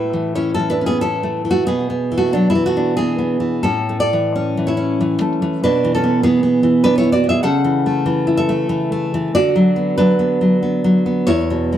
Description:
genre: romantic piece for solo classical guitar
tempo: 79-101 BPM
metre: 3/4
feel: rubato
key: A major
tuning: A4 = 440 Hz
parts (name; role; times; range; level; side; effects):
- nylon-string guitar; solo; 0.0-11.8 s; E2 to F#5; -14 LUFS; equal; slapback echo
room: little or no reverb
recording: dry, close 1970s-style studio recording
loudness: -14 LUFS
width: side -11 dB against mid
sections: 0.0-11.8 A section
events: none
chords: 0.0 A; 1.7 E7/B; 3.6 A; 5.6 E7/B; 7.4 A/C#; 9.3 Bm/D; 11.3 E5

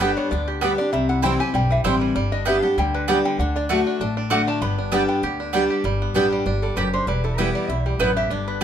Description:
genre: bluegrass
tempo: 195 BPM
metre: 4/4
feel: swing 54% on 8ths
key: G major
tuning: A4 = 440 Hz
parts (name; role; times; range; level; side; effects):
- bluegrass banjo; melody; 0.0-8.6 s; D3 to G4; -28 LUFS; right 4 dB; none
- lap resonator guitar; melody; 0.0-8.6 s; G4 to B5; -27 LUFS; left 2 dB; none
- picked steel-string acoustic guitar; accompaniment; 0.0-8.6 s; E2 to G4; -23 LUFS; left 2 dB; none
- mandolin; stabs; 0.0-8.6 s; A3 to G5; -23 LUFS; right 6 dB; none
- upright bass; bass; 0.0-8.6 s; E1 to D2; -26 LUFS; equal; none
room: moderate studio ambience, RT60 0.5 s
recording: minimal, uncompressed stereo recording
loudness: -19 LUFS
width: side -9 dB against mid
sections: 0.0-5.8 A section; 5.8-8.6 B section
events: resonator guitar played with a steel bar solo 0.0-5.8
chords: 0.0 G; 0.9 C; 2.2 G; 3.4 D; 4.6 G; 7.1 Em

